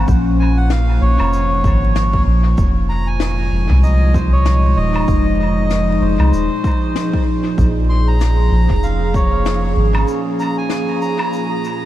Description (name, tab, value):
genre	ambient dub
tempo	96 BPM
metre	4/4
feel	swing 58% on 16ths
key	Bb minor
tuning	A4 = 440 Hz
part	warbly tape-like pad	sustained chords	0.0-11.9 s	Bb2 to Ab4	-20 LUFS	right 1 dB	chorus, built-in reverb
part	soft dub sub bass	bass	0.0-10.0 s	Eb1 to C2	-15 LUFS	equal	tube saturation
part	electronic kick drum	drums	0.1-9.3 s	none	-18 LUFS	equal	none
part	shaker, snare drum and woodblock	drums	0.1-11.8 s	none	-28 LUFS	left 3 dB	dub echo
part	melodica	melody	0.4-11.9 s	C5 to C6	-23 LUFS	equal	dub echo
room	moderate huge ambient reverb, RT60 8.2 s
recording	dreamy mix soaked in reverb, vinyl crackle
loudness	-13 LUFS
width	side -13 dB against mid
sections	0.0-11.9 A section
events	break 10.1-11.9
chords	0.0 Bbm7; 2.6 Fm7; 7.6 Bbm7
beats	| 0.08 0.70 1.33 1.95 | 2.58 3.20 3.83 4.45 | 5.08 5.70 6.33 6.95 | 7.58 8.20 8.83 9.45 | 10.08 10.70 11.33